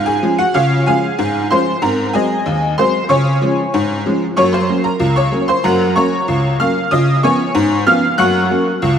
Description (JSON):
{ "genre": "ragtime piano", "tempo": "94 BPM", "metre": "2/4", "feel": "straight", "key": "Db major", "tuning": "A4 = 437 Hz", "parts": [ { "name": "tack piano", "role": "solo", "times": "0.0-9.0 s", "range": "Db2 to Gb6", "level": "-12 LUFS", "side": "equal", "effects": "analog chorus, analog delay" } ], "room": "moderate plate reverb, RT60 2.9 s", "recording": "dreamy mix soaked in reverb, vinyl crackle", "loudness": "-12 LUFS", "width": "side -8 dB against mid", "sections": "0.0-9.0 A section", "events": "none", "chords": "0.0 Db; 1.8 Ab7; 3.1 Db; 4.4 Gb; 6.9 Db7; 8.2 Gb" }